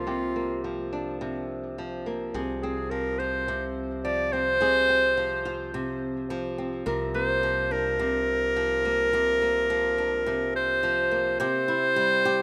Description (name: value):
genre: folktronica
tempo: 106 BPM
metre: 4/4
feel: straight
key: unclear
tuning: A4 = 440 Hz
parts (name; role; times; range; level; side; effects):
- bright clarinet; melody; 0.0-12.4 s; F4 to D5; -26 LUFS; equal; none
- flamenco guitar; arpeggios; 0.0-12.4 s; C3 to Bb4; -33 LUFS; equal; low-pass filter
- modern bright fingered electric bass; bass; 0.0-11.4 s; C2; -42 LUFS; equal; none
room: moderate lush hall reverb, RT60 2.8 s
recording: rough home demo mix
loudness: -26 LUFS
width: mono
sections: 0.0-11.4 A section; 11.4-12.4 B section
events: none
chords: 0.0 Gm7/C; 2.3 Fm/C; 6.9 Bbadd9/C; 11.4 C7